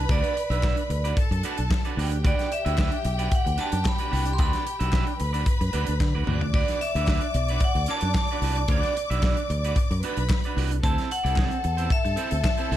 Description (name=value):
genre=disco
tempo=112 BPM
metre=4/4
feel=straight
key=D mixolydian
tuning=A4 = 440 Hz
part: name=vibraphone with hard mallets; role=melody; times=0.0-12.8 s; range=D5 to C6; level=-29 LUFS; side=equal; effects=none
part: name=clear symphonic string section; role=second line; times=0.0-12.8 s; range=G4 to D6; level=-33 LUFS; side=left 2 dB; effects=none
part: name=electric guitar at the edge of break-up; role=accompaniment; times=0.0-12.8 s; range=C4 to E5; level=-32 LUFS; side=right 7 dB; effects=none
part: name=fingered electric bass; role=bass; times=0.0-12.8 s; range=B1 to D3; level=-26 LUFS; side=equal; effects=none
part: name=modern studio drum kit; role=drums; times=0.1-12.8 s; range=hi-hat, kick drum, snare drum, splash cymbal, toms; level=-26 LUFS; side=equal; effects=none
part: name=group handclap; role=percussion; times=0.6-12.6 s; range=none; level=-40 LUFS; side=left 9 dB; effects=none
room=small room ambience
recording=none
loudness=-22 LUFS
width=side -12 dB against mid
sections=0.0-12.8 A section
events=drum fill 6.0-6.5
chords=0.0 D6; 2.0 Gmaj7; 10.8 C6